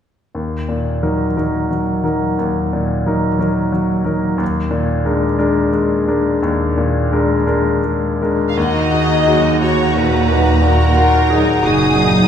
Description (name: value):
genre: classical, romantic movement for piano and orchestra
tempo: 54-61 BPM (dotted quarters)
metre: 12/8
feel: rubato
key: Eb minor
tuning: A4 = 440 Hz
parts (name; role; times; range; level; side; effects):
- bright grand piano; melody; 0.3-12.3 s; Eb2 to Bb4; -16 LUFS; left 1 dB; none
- rich symphonic violin section; second line; 8.5-12.3 s; Ab4 to F5; -20 LUFS; left 3 dB; none
- warm symphonic violin section; melody; 8.6-12.3 s; Bb5 to Eb6; -22 LUFS; left 3 dB; none
- bright clarinet; second line; 8.6-12.3 s; Eb4; -22 LUFS; right 5 dB; none
- mellow hollow large flute ensemble; second line; 8.6-12.3 s; Gb5; -20 LUFS; equal; none
- rich studio viola section; accompaniment; 8.6-12.3 s; Eb4 to Ab4; -22 LUFS; right 1 dB; none
- rich studio cello section; bass; 8.6-12.3 s; Eb2 to Gb2; -21 LUFS; right 3 dB; none
- rich symphonic double bass section; bass; 8.6-12.3 s; Gb1 to Eb2; -18 LUFS; right 1 dB; none
- mellow French horn section; sustained chords; 9.3-11.4 s; Gb3 to Eb4; -24 LUFS; right 2 dB; none
room: wet scoring stage reverb, RT60 1.8 s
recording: heard from further back in the room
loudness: -14 LUFS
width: side -8 dB against mid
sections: 0.3-8.6 A section; 8.6-12.3 B section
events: none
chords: 0.3 Ebm; 4.4 Bb7/Eb; 8.6 Ebm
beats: | 0.34 1.38 2.40 3.42 | 4.41 5.41 6.42 7.48 | 8.57 9.61 10.64 11.65